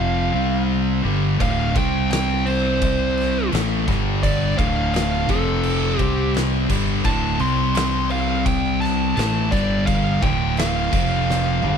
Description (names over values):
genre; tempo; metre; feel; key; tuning
stoner and doom metal; 85 BPM; 4/4; straight; unclear; A4 = 440 Hz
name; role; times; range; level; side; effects
fuzz lead guitar; melody; 0.0-11.8 s; A4 to C6; -25 LUFS; equal; distortion, slapback echo
high-gain distorted guitar; riff; 0.0-11.8 s; D2 to C4; -27 LUFS; equal; distortion
thick fuzz guitar; riff; 0.0-11.8 s; D2 to C4; -25 LUFS; left 12 dB; distortion
thick fuzz guitar; riff; 0.0-11.8 s; D2 to C4; -26 LUFS; right 9 dB; distortion
fuzz fingered electric bass; bass; 0.0-11.8 s; D1 to C2; -24 LUFS; equal; overdrive
oversized low-tuned drum kit; drums; 1.4-11.8 s; crash cymbal, kick drum, snare drum, toms; -25 LUFS; equal; none
room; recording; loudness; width
small room ambience; none; -18 LUFS; side -7 dB against mid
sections
0.0-11.8 A section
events
drum fill 11.3-11.8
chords
0.3 C5; 1.0 Dm; 1.8 C5; 3.5 A5; 3.9 G5; 4.6 Dm; 5.3 F5; 6.0 C5; 6.7 D5; 7.4 C5; 9.2 A5; 9.5 G5; 10.2 Dm; 10.9 F5